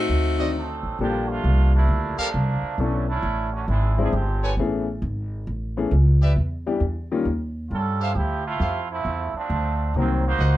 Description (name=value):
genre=jazz, big band swing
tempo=134 BPM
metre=4/4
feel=swing 65% on 8ths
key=unclear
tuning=A4 = 443 Hz
part: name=bright saxophone section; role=melody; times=0.0-0.8 s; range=A3 to Gb4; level=-24 LUFS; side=left 3 dB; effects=none
part: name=upright bass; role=bass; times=0.0-10.6 s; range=G1 to G2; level=-22 LUFS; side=equal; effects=none
part: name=clear baby grand piano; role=accompaniment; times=0.4-7.3, 10.0-10.2 s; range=Eb3 to A4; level=-26 LUFS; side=left 4 dB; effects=none
part: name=clear trumpet section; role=stabs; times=0.4-10.6 s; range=F#4 to G#5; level=-28 LUFS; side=right 1 dB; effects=none
part: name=muted trombone section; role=second line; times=0.5-4.5, 7.7-10.6 s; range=D3 to C5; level=-27 LUFS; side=right 4 dB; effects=none
room=light reverb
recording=dark, warm production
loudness=-21 LUFS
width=side -15 dB against mid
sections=1.0-10.6 A section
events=trombone section solo 1.0-10.6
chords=0.1 D7b9; 1.0 Gm9; 2.8 Bm11; 3.7 E7alt; 4.6 Amaj9; 6.4 Em7; 7.3 Eb9; 8.2 Dm9; 10.0 Cm7b5